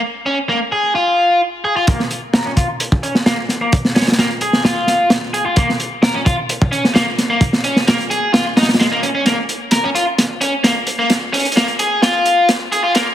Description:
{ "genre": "breakbeat, breaks", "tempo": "130 BPM", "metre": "4/4", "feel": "straight", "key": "Bb minor", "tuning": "A4 = 440 Hz", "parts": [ { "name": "biting overdriven guitar", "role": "riff", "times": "0.3-13.1 s", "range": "Ab3 to Bb4", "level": "-16 LUFS", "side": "equal", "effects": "tube saturation, low-pass filter, ping-pong delay" }, { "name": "crunchy breakbeat drum kit", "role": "drums", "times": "1.9-13.1 s", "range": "hi-hat, kick drum, snare drum", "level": "-15 LUFS", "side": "equal", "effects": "none" } ], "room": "wet plate reverb, RT60 1.6 s, studio ambience", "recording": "heavily compressed radio sound, high-pass filter", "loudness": "-13 LUFS", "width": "side -11 dB against mid", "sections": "0.0-1.9 A section; 1.9-13.1 B section", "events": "build-up 1.9-13.1; filter sweep 1.9-13.1; drum fill 9.3-13.1", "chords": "none" }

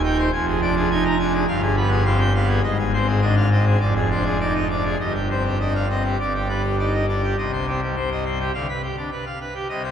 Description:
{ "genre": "classical, organ toccata", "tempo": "103 BPM", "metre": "4/4", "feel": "straight", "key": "C minor", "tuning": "A4 = 439 Hz", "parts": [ { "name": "pipe organ, full organ", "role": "solo", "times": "0.0-9.9 s", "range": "Eb1 to Bb5", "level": "-19 LUFS", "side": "equal", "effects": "none" } ], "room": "wet church reverb, RT60 3.9 s", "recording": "minimal, uncompressed stereo recording", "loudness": "-19 LUFS", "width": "side -8 dB against mid", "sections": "0.0-7.4 A section; 7.4-9.9 B section", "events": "none", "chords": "0.3 Ddim/F; 1.5 G7b9; 2.6 Ab; 3.8 Dm7b5/F; 5.0 Cm/G; 6.2 G; 7.4 Cm; 8.5 G7/D" }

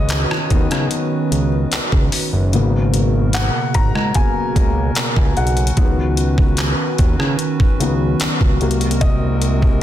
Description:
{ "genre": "contemporary R&B", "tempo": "74 BPM", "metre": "4/4", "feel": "straight", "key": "unclear", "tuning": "A4 = 440 Hz", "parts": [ { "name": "felt-muted upright piano", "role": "accompaniment", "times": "0.0-9.8 s", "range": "B#2 to A#5", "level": "-22 LUFS", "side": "left 5 dB", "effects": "none" }, { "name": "hollow soft pad", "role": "sustained chords", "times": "0.0-9.8 s", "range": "B2 to B4", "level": "-23 LUFS", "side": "right 5 dB", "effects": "chorus" }, { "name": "fat analog bass", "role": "bass", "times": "0.0-9.8 s", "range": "F#1 to C#3", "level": "-18 LUFS", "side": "equal", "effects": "none" }, { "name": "detuned 8-bit digital drum machine", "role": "drums", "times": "0.1-9.8 s", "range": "handclaps, hi-hat, kick drum, rim click", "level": "-18 LUFS", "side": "equal", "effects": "soft clipping on snare" } ], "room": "digital ambience", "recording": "dense, heavily limited modern master", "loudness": "-14 LUFS", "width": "side -12 dB against mid", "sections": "0.0-9.8 A section", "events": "felt piano solo 0.0-9.8; kick muted 2.5-3.3", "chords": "0.0 C#9sus4; 2.5 G#m11; 5.8 C#9sus4; 8.6 G#9/B#" }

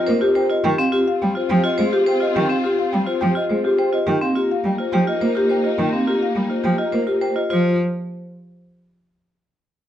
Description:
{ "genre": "classical, minimalist pattern music", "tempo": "105 BPM", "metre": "3/4", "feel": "straight", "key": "unclear", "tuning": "A4 = 441 Hz", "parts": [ { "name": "marimba with medium mallets", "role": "melody", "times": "0.0-7.8 s", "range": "G4 to G5", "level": "-20 LUFS", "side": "left 2 dB", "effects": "none" }, { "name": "warm symphonic string section", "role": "sustained chords", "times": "0.0-7.3 s", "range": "Bb3 to F4", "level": "-27 LUFS", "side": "left 1 dB", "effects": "none" }, { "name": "vibraphone with hard mallets", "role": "arpeggios", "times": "0.0-7.8 s", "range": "C4 to C5", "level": "-23 LUFS", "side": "equal", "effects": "none" }, { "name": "clear cello", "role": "accompaniment", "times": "0.1-7.8 s", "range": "Eb3 to Bb3", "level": "-21 LUFS", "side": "right 2 dB", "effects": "none" } ], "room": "light reverb", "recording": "worn, warbling old tape, cassette tape, warbly pitch drift, nothing above 10.6 kHz", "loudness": "-17 LUFS", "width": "side -11 dB against mid", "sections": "0.0-7.5 A section; 7.5-9.2 B section", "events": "none", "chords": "0.0 Cm7; 0.6 Ab6 (rootless); 4.1 Cm7; 7.5 F5" }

